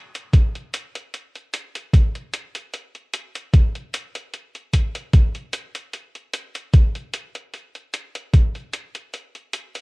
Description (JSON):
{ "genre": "vaporwave", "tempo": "75 BPM", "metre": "4/4", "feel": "swing 54% on 16ths", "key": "none", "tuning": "none", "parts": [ { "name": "electronic hi-hat", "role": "drums", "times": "0.2-9.8 s", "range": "none", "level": "-30 LUFS", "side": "equal", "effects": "overdrive" }, { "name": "electronic kick drum", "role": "drums", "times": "0.3-8.5 s", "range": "none", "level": "-14 LUFS", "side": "equal", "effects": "overdrive" } ], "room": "little or no reverb", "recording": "rough home demo mix, cassette tape, lossy compression artefacts", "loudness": "-20 LUFS", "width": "side -28 dB against mid", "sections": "0.0-9.8 A section", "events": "none", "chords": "none", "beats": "0.34 1.14 | 1.94 2.74 3.54 4.34 | 5.14 5.94 6.74 7.54 | 8.34 9.14" }